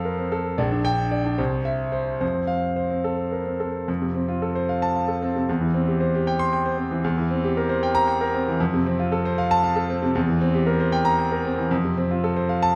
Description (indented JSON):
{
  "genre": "classical, virtuoso piano study",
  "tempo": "76 BPM (dotted quarters)",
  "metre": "6/8",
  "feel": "rubato",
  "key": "F major",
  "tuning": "A4 = 442 Hz",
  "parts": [
    { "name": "clear concert grand piano", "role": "solo", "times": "0.0-12.8 s", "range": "Bb1 to C6", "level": "-23 LUFS", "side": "equal", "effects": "none" }
  ],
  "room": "moderate recital hall reverb, RT60 1.5 s",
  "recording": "none",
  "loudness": "-23 LUFS",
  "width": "mono",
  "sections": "0.0-3.9 A section; 3.9-12.8 A section",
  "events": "none",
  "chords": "0.0 F; 0.6 Gm/Bb; 1.4 C; 2.2 F; 5.5 C/E; 7.0 C7/E; 8.6 F; 10.2 C7/E; 11.7 F"
}